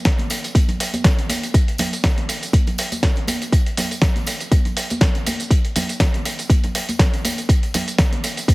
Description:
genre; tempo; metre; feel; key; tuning
house; 121 BPM; 4/4; swing 55% on 16ths; none; none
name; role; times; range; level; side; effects
tambourine and congas; percussion; 0.0-8.5 s; none; -27 LUFS; right 1 dB; sidechain pumping on perc
dusty soul sampler-style drum kit; drums; 0.1-8.5 s; hi-hat, snare drum, tambourine; -22 LUFS; equal; sidechain pumping on hats, sidechain pumping on perc
electronic kick drum; drums; 0.1-8.5 s; none; -16 LUFS; equal; none
room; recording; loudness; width
little or no reverb; heavily compressed radio sound; -17 LUFS; side -22 dB against mid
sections
0.0-8.5 A section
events
none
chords
none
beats
0.06 0.55 1.05 | 1.54 2.04 2.53 3.03 | 3.53 4.02 4.52 5.01 | 5.51 6.00 6.50 7.00 | 7.49 7.99 8.48

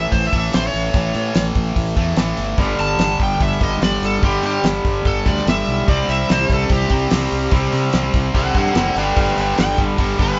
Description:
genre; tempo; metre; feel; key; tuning
classic rock; 146 BPM; 4/4; straight; unclear; A4 = 445 Hz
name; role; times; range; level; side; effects
overdriven slide guitar; melody; 0.0-10.4 s; G4 to A5; -25 LUFS; equal; digital delay
distorted electric guitar; riff; 0.0-10.4 s; G2 to C4; -25 LUFS; equal; overdrive
fuzz fingered electric bass; bass; 0.0-10.3 s; F#1 to C3; -25 LUFS; equal; overdrive
damped 70s drum kit; drums; 0.1-10.3 s; hi-hat, kick drum, snare drum; -22 LUFS; equal; none
cranked stack guitar; riff; 2.6-10.4 s; G2 to C4; -27 LUFS; equal; overdrive
cranked stack guitar; riff; 9.2-10.4 s; G2 to G3; -28 LUFS; equal; overdrive
room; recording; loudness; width
light reverb; band playing live in one room, nothing above 7.6 kHz; -18 LUFS; mono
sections
0.0-10.4 A section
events
electric slide guitar solo 0.0-10.4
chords
0.0 A; 2.6 G5; 5.9 C5; 9.0 G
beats
0.12 0.53 | 0.95 1.36 1.77 2.18 | 2.59 3.00 3.42 3.83 | 4.24 4.65 5.06 5.47 | 5.88 6.29 6.71 7.12 | 7.53 7.94 8.35 8.76 | 9.17 9.58 9.99

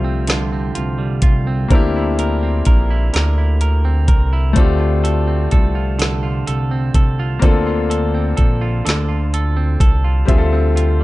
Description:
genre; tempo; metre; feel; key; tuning
slow six-eight R&B; 42 BPM (dotted quarters); 6/8; straight; D minor; A4 = 440 Hz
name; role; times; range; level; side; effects
semi-hollow electric guitar; second line; 0.0-11.0 s; D3 to Bb4; -24 LUFS; right 5 dB; none
clear grand piano; accompaniment; 0.0-11.0 s; F3 to E5; -22 LUFS; left 5 dB; none
smooth synth bass; bass; 0.0-11.0 s; Bb1 to D2; -17 LUFS; equal; none
smooth R&B drum kit; drums; 0.3-11.0 s; hi-hat, kick drum, snare drum; -14 LUFS; equal; none
room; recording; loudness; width
little or no reverb; dark, warm production, nothing above 10.9 kHz; -14 LUFS; side -18 dB against mid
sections
0.0-11.0 A section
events
none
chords
0.0 Dm11; 1.7 C9; 4.6 F6; 7.4 Bbmaj9; 10.3 Dm11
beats
0.28 | 1.71 3.14 | 4.57 6.00 | 7.42 8.85 | 10.28

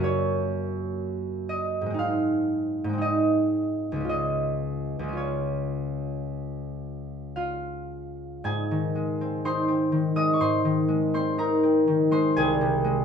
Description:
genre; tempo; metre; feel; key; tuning
classical, solo harp piece; 54-64 BPM; 4/4; rubato; Db major, Ab major from 8.4 s; A4 = 444 Hz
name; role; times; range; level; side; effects
concert harp; solo; 0.0-13.0 s; C2 to Eb6; -24 LUFS; equal; none
room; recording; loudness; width
light reverb; none; -23 LUFS; side -7 dB against mid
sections
0.0-8.4 A section; 8.4-13.0 B section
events
none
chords
0.0 Gb; 2.0 Ab; 4.1 Db; 8.4 Ab; 12.4 Ab/C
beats
| 0.03 0.99 1.98 3.01 | 4.08 5.17 6.27 7.35 | 8.44 9.44 10.41 11.39 | 12.36

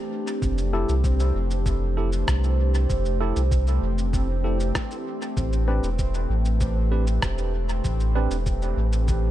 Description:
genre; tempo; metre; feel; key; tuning
ambient dub; 97 BPM; 4/4; straight; unclear; A4 = 440 Hz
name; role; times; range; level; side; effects
warbly tape-like pad; sustained chords; 0.0-9.3 s; E3 to B4; -31 LUFS; left 2 dB; chorus, built-in reverb
bubbling stepped-filter texture; texture; 0.0-9.3 s; C4; -33 LUFS; right 4 dB; chorus, built-in reverb
electronic cabasa and rim click; drums; 0.3-9.2 s; none; -34 LUFS; equal; studio reverb, dub echo
warm sub bass; bass; 0.4-9.3 s; E1 to C2; -22 LUFS; equal; tube saturation
electronic kick drum; drums; 0.4-9.2 s; none; -27 LUFS; equal; studio reverb
tine electric piano; stabs; 0.7-8.4 s; C4 to B4; -33 LUFS; moving between left 3 dB and right 7 dB; auto-pan, dub echo
room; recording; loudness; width
digital ambience; echo-heavy mix; -21 LUFS; side -13 dB against mid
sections
0.0-9.3 A section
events
none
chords
0.4 Fmaj7; 5.4 Am11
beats
| 0.42 1.04 1.66 2.28 | 2.90 3.52 4.13 4.75 | 5.37 5.99 6.61 7.23 | 7.85 8.46 9.08

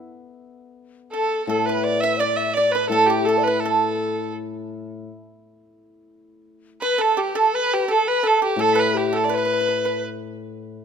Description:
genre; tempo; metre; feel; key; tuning
chinese traditional, Chinese chamber ensemble; 84 BPM; 4/4; straight; A shang mode; A4 = 440 Hz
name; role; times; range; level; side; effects
hammered dulcimer; accompaniment; 0.0-10.7 s; A2; -29 LUFS; left 5 dB; none
rich erhu; melody; 1.1-10.0 s; G4 to E5; -23 LUFS; right 3 dB; none
breathy mellow low xiao; second line; 1.1-10.0 s; G4 to E5; -24 LUFS; left 7 dB; none
pipa; second line; 1.1-10.0 s; G4 to E5; -22 LUFS; right 6 dB; none
room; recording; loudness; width
little or no reverb; close, detailed microphones; -18 LUFS; side -7 dB against mid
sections
0.1-10.8 A section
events
none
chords
none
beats
| 0.05 0.78 1.49 2.21 | 2.92 3.63 4.34 5.05 | 5.76 6.46 7.17 7.88 | 8.59 9.31 10.03

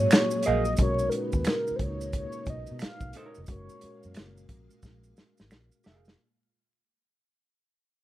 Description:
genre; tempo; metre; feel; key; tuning
R&B, neo-soul; 89 BPM; 4/4; swing 64% on 16ths; F# major; A4 = 441 Hz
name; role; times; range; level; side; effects
mellow horn-like synth lead; melody; 0.0-4.5 s; A#4 to E#5; -30 LUFS; right 1 dB; chorus
mellow tine electric piano; accompaniment; 0.0-6.2 s; G#3 to C#5; -38 LUFS; left 3 dB; medium stereo tremolo
string machine, full ensemble; sustained chords; 0.0-6.2 s; A#2 to E#5; -36 LUFS; left 1 dB; ensemble chorus
vintage muted fingered electric bass; bass; 0.0-6.1 s; E#1 to B2; -32 LUFS; equal; none
vintage hollow-body jazz guitar; second line; 0.1-6.1 s; D#4 to E#5; -32 LUFS; right 6 dB; none
warm soul drum kit; drums; 0.1-6.2 s; finger snaps, hi-hat, kick drum, snare drum; -25 LUFS; equal; none
finger snaps and maracas; percussion; 0.1-6.2 s; none; -37 LUFS; right 4 dB; none
room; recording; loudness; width
light reverb; rough home demo mix, vinyl crackle; -25 LUFS; side -14 dB against mid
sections
0.0-6.2 A section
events
fade-out 0.0-6.2; drum fill 4.8-6.2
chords
0.0 F#maj9; 0.8 Bmaj9; 3.5 F#maj9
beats
0.11 | 0.79 1.46 2.14 2.81 | 3.48 4.16 4.83 5.51

